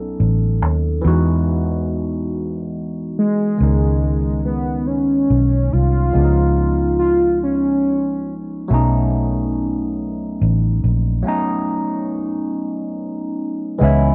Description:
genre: slow six-eight R&B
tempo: 47 BPM (dotted quarters)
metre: 6/8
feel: straight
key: unclear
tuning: A4 = 440 Hz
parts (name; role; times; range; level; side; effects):
- barky tine electric piano; accompaniment; 0.0-14.1 s; D#3 to A4; -24 LUFS; equal; overdrive, phaser
- vintage muted fingered electric bass; bass; 0.0-14.1 s; A1 to E2; -20 LUFS; equal; none
- warm velvety synth lead; melody; 3.2-8.3 s; G#3 to E#4; -20 LUFS; equal; chorus, slapback echo
room: light reverb, digital ambience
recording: none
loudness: -19 LUFS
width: mono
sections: 0.0-13.8 A section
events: break 11.2-13.8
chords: 0.0 B7; 1.0 Emaj9; 3.6 C#sus2; 6.1 C#7; 8.7 B7

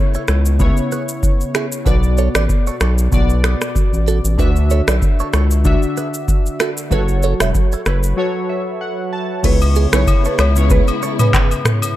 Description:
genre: afrobeats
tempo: 95 BPM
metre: 4/4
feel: swing 55% on 16ths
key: unclear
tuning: A4 = 440 Hz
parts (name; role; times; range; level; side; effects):
- warm analog keys; accompaniment; 0.0-12.0 s; B2 to A5; -21 LUFS; left 1 dB; chorus
- direct-recorded clean electric guitar; riff; 0.1-11.5 s; E4 to E5; -25 LUFS; right 8 dB; phaser, ping-pong delay
- booming analog drum machine; drums; 0.1-12.0 s; crash cymbal, finger snaps, handclaps, kick drum, rim click, shaker, toms; -17 LUFS; equal; none
- round analog bass; bass; 0.3-10.8 s; E1 to D2; -15 LUFS; equal; none
- warm symphonic string section; sustained chords; 9.4-11.9 s; C#3 to E4; -27 LUFS; left 1 dB; none
- buzzing marimba with medium mallets; melody; 9.5-11.3 s; B4 to C#5; -24 LUFS; right 1 dB; ping-pong delay
- agogo bells and woodblock; percussion; 9.6-12.0 s; none; -25 LUFS; left 7 dB; none
room: little or no reverb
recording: dark, warm production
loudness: -14 LUFS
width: side -14 dB against mid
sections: 0.0-9.4 A section; 9.4-12.0 B section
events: synth keys fill 7.5-9.4; break 8.2-9.4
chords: 0.0 C#m7; 1.9 Bm; 4.4 Dadd9; 6.9 F#m; 9.4 C#m7

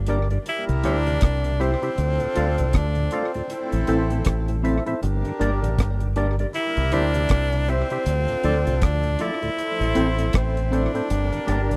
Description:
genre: roots reggae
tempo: 79 BPM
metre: 4/4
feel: swing 59% on 16ths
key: G dorian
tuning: A4 = 440 Hz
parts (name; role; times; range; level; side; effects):
- clear tenor saxophone; melody; 0.0-11.8 s; C4 to E4; -29 LUFS; equal; tape echo
- mellow horn section; second line; 0.0-11.8 s; C4 to C5; -34 LUFS; equal; tape echo
- deep dub fingered electric bass; bass; 0.0-11.8 s; G1 to D2; -25 LUFS; equal; none
- mellow electric guitar; accompaniment; 0.1-11.8 s; C4 to E5; -33 LUFS; equal; spring reverb, tape echo
- mellow tonewheel organ; accompaniment; 0.1-11.8 s; D2 to F4; -35 LUFS; equal; slow rotary speaker, tape echo
- percussive organ stab; stabs; 0.1-11.7 s; C4 to F5; -30 LUFS; equal; chorus
- deep reggae drum kit; drums; 0.1-11.8 s; hi-hat, kick drum, rim click; -26 LUFS; equal; none
room: little or no reverb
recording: dry, close 1970s-style studio recording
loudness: -23 LUFS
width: mono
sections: 0.0-11.8 A section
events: none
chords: 0.5 C; 2.0 Dm; 3.5 Am; 5.0 Gm; 6.5 C; 8.1 Dm; 9.6 Am; 11.1 Gm

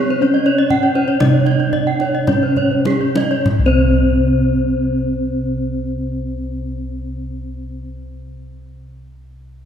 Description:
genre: Balinese gamelan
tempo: 48-64 BPM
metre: 4/4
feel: straight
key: unclear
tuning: A4 = 439 Hz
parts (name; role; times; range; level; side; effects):
- gamelan-type bronze metallophone; melody; 0.0-7.9 s; C4 to D4+50c; -18 LUFS; equal; none
- gamelan-type bronze metallophone; arpeggios; 0.0-7.9 s; Ab4-40c to G5-45c; -22 LUFS; right 3 dB; none
- gamelan-type bossed gongs; bass; 0.0-7.8 s; C2 to Db4; -21 LUFS; right 1 dB; none
- gamelan-type bronze metallophone; arpeggios; 0.1-7.9 s; C5 to D5+50c; -24 LUFS; left 5 dB; none
- kendang; percussion; 0.5-4.0 s; none; -24 LUFS; equal; none
room: wet church reverb, RT60 3.4 s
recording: recorded in a church or concert hall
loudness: -14 LUFS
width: side -8 dB against mid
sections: 0.0-3.5 A section; 3.5-8.4 B section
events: slowing down 0.0-3.5; drum fill 2.6-3.5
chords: none

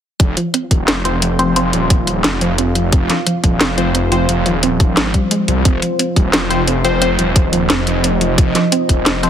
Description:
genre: dark technical drum and bass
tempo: 176 BPM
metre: 4/4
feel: straight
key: unclear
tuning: A4 = 439 Hz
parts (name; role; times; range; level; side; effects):
- deep dark ambient pad; sustained chords; 1.7-9.3 s; F3 to F5; -21 LUFS; right 1 dB; chorus, built-in reverb, sidechain pumping
- soft round pluck; arpeggios; 0.2-9.3 s; F3 to C4; -21 LUFS; right 2 dB; chorus, sidechain pumping, dub echo
- wide detuned saw bass; bass; 0.2-9.3 s; Eb1 to C2; -18 LUFS; equal; chorus, tube saturation
- drum and bass drum kit; drums; 0.2-9.3 s; hi-hat, snare drum; -17 LUFS; equal; none
- electronic kick drum; drums; 0.2-9.0 s; none; -13 LUFS; equal; none
- band-passed chord stab; stabs; 1.0-1.6, 3.8-4.3, 6.5-7.1, 9.2-9.3 s; F3 to C5; -19 LUFS; left 3 dB; phaser, dub echo
room: light reverb, digital ambience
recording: heavily compressed radio sound, multiband compression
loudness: -12 LUFS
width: side -9 dB against mid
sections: 0.2-9.3 A section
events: filter sweep on synth pluck 0.2-9.3; filter sweep on synth stab 0.2-9.3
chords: 0.2 F5

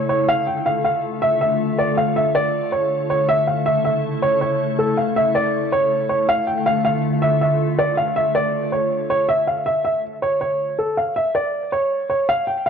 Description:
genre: hip hop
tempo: 160 BPM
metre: 4/4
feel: half-time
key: D harmonic minor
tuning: A4 = 436 Hz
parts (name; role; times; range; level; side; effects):
- dark baby grand piano; melody; 0.0-12.7 s; A4 to G5; -18 LUFS; right 1 dB; low-pass filter
- glassy FM pad; sustained chords; 0.0-9.3 s; C#3 to A4; -23 LUFS; left 1 dB; ensemble chorus, built-in reverb
room: moderate recital hall reverb, RT60 1.4 s, studio reverb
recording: dry, gritty hardware recording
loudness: -17 LUFS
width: side -7 dB against mid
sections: 0.0-9.3 A section; 9.3-12.7 B section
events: none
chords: 0.3 Dm; 3.3 A; 6.3 Dm; 9.3 N.C.

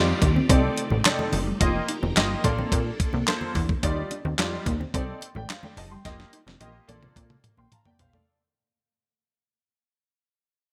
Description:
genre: early-eighties boogie funk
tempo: 108 BPM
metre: 4/4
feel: straight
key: unclear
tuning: A4 = 439 Hz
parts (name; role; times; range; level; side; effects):
- clear baby grand piano; accompaniment; 0.0-8.4 s; G3 to C6; -32 LUFS; equal; analog chorus
- phased string machine; sustained chords; 0.0-3.8 s; C3 to D5; -37 LUFS; equal; ensemble chorus, phaser
- plucky analog bass; bass; 0.0-8.2 s; F1 to Bb2; -30 LUFS; equal; none
- mellow electric guitar; riff; 0.2-8.2 s; G3 to Eb4; -34 LUFS; equal; lush chorus
- crisp 8-bit digital drum machine; drums; 0.2-8.3 s; handclaps, hi-hat, kick drum, snare drum, toms; -27 LUFS; equal; gated reverb
- congas; percussion; 0.2-8.1 s; none; -38 LUFS; equal; none
room: light reverb, digital ambience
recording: bright 1980s-style digital production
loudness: -24 LUFS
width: mono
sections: 0.0-8.3 A section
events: fade-out 0.0-8.3; drum fill 6.0-8.3; grand piano fill 7.4-8.3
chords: 0.5 Cm69; 1.6 F9sus4; 2.4 Bbmaj7; 3.8 Ebmaj9; 4.9 Cm69; 6.0 F9sus4; 6.9 Bbmaj7

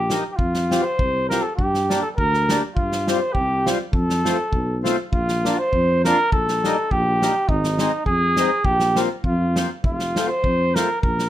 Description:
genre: alpine folk, alpine dance band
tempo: 101 BPM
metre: 2/4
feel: swing 53% on 8ths, rubato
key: unclear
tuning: A4 = 438 Hz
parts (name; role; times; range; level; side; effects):
- warm trumpet; melody; 0.0-11.3 s; Eb4 to C5; -21 LUFS; right 1 dB; none
- dark tuba; bass; 0.0-11.3 s; F1 to G2; -24 LUFS; equal; none
- accordion; accompaniment; 0.1-10.9 s; G3 to G4; -24 LUFS; left 2 dB; none
- natural country drum kit; drums; 0.1-11.3 s; kick drum, snare drum; -24 LUFS; equal; none
room: moderate studio reverb, RT60 0.6 s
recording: minimal, uncompressed stereo recording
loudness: -18 LUFS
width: side -12 dB against mid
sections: 0.0-11.3 A section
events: none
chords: 0.4 Fsus2; 1.6 Gm; 2.8 Csus4/G; 3.9 F; 5.1 Bb; 6.3 Eb/Bb; 7.5 Ab; 8.6 Bbsus2; 9.8 F

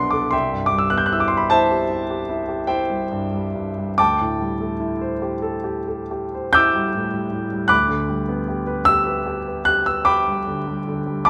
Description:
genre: classical, impressionist solo piano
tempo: 49 BPM (dotted quarters)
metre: 9/8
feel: uneven beats, rubato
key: G major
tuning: A4 = 438 Hz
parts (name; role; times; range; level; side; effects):
- warm grand piano; solo; 0.0-11.3 s; C2 to G6; -21 LUFS; equal; none
room: moderate recital hall reverb, RT60 1.4 s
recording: none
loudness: -21 LUFS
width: mono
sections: 0.0-11.3 A section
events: none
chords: 0.3 Cmaj7; 4.0 D11; 7.7 Gmaj7/D

